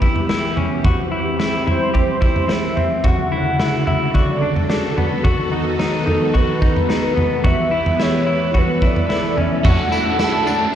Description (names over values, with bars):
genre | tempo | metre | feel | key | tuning
dream pop | 109 BPM | 4/4 | straight | D major | A4 = 440 Hz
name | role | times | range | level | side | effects
warm velvety synth lead | melody | 0.0-10.8 s | A4 to A5 | -22 LUFS | equal | chorus, digital delay
string machine, violas | sustained chords | 0.0-10.8 s | C#3 to B4 | -22 LUFS | equal | ensemble chorus
semi-hollow electric guitar | arpeggios | 0.0-10.7 s | B3 to G4 | -23 LUFS | left 2 dB | wide subtle chorus, digital delay
raw garage drum kit | drums | 0.0-10.6 s | crash cymbal, kick drum, snare drum, tambourine, toms | -19 LUFS | equal | none
overdriven electric guitar | accompaniment | 9.6-10.7 s | D3 to A4 | -24 LUFS | right 4 dB | tremolo, ensemble chorus
shimmering bell with halo | texture | 10.2-10.8 s | E5 | -32 LUFS | right 1 dB | ensemble chorus, phaser, digital delay
room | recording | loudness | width
moderate plate reverb, RT60 2.1 s | played on a big sound system in a bare room, stone room reverb | -15 LUFS | side -10 dB against mid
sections
0.0-9.6 A section; 9.6-10.8 B section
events
none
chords
0.0 Em; 0.8 C; 3.0 Dmaj7; 5.2 B7/D#; 7.4 Em; 8.5 Asus2; 9.6 Dmaj7